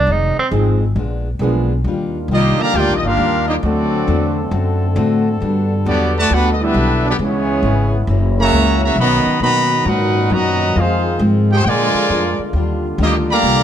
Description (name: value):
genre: jazz, big band swing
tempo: 135 BPM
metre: 4/4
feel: swing 65% on 8ths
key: unclear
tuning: A4 = 440 Hz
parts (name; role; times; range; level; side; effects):
- breathy tenor saxophone; melody; 0.0-0.5 s; C4 to Eb4; -17 LUFS; right 3 dB; none
- upright bass; bass; 0.0-13.6 s; F1 to B2; -17 LUFS; equal; none
- picked steel-string acoustic guitar; accompaniment; 0.1-13.6 s; F2 to Ab4; -24 LUFS; left 5 dB; none
- warm grand piano; accompaniment; 0.5-1.7 s; F3 to Ab4; -21 LUFS; right 6 dB; none
- clear trombone section; sustained chords; 1.8-13.6 s; Db3 to A4; -25 LUFS; left 2 dB; none
- brilliant trumpet section; melody; 2.3-13.6 s; Bb3 to B5; -17 LUFS; equal; none
- bright trombone section; second line; 2.3-13.6 s; A#2 to G4; -20 LUFS; right 2 dB; none
room: light reverb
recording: none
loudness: -13 LUFS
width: side -10 dB against mid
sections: 0.0-1.9 A section; 1.9-13.6 B section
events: tenor saxophone solo 0.0-1.9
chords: 0.1 Fm7; 1.0 Bb7b9; 1.9 Ebmaj9; 3.6 D7; 5.4 Gmaj7; 7.2 Dbm7; 8.1 Gb7; 9.0 Bmaj7; 10.8 Fm7; 11.7 Bb7; 12.6 Ebmaj9